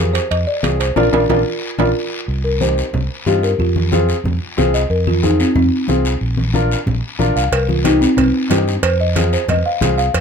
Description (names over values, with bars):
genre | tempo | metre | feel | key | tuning
latin, cumbia | 183 BPM | 4/4 | straight | unclear | A4 = 441 Hz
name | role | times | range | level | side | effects
folk marimba with soft mallets | melody | 0.0-10.2 s | C4 to F5 | -18 LUFS | equal | none
dark upright piano | accompaniment | 0.0-10.0 s | C4 to Bb4 | -20 LUFS | left 2 dB | none
fingered electric bass | bass | 0.0-10.2 s | Bb1 to G2 | -18 LUFS | right 1 dB | none
guiro | percussion | 0.1-10.2 s | none | -28 LUFS | left 4 dB | none
timbales and cowbell | percussion | 0.2-1.9, 7.5-10.2 s | none | -22 LUFS | right 7 dB | none
congas | percussion | 0.6-10.0 s | none | -22 LUFS | left 2 dB | none
room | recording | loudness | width
light reverb | close, detailed microphones | -14 LUFS | side -6 dB against mid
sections
0.0-2.3 A section; 2.3-10.2 B section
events
band accent 1.0-2.3; drum fill 1.3-2.3; marimba solo 2.3-10.2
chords
0.0 Fm; 1.0 Bb; 2.3 Cm; 3.6 Fm; 6.2 Bb; 7.5 Cm; 8.8 Fm